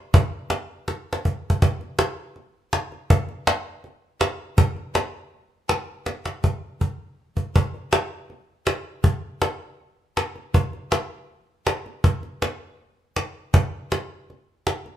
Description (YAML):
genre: flamenco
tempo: 161 BPM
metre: 4/4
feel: straight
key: none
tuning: none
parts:
  - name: cajon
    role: percussion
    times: 0.1-15.0 s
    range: none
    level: -19 LUFS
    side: equal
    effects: none
room: light reverb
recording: minimal, uncompressed stereo recording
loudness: -22 LUFS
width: side -11 dB against mid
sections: 0.0-7.5 A section; 7.5-15.0 B section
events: drum fill 0.9-1.6, 6.1-7.5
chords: none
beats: | 0.13 0.50 0.88 1.25 | 1.62 1.99 2.36 2.73 | 3.10 3.47 3.84 4.21 | 4.58 4.95 5.32 5.69 | 6.06 6.43 6.81 7.18 | 7.55 7.92 8.30 8.67 | 9.04 9.42 9.79 10.16 | 10.54 10.91 11.29 11.66 | 12.04 12.41 12.79 13.16 | 13.54 13.92 14.29 14.67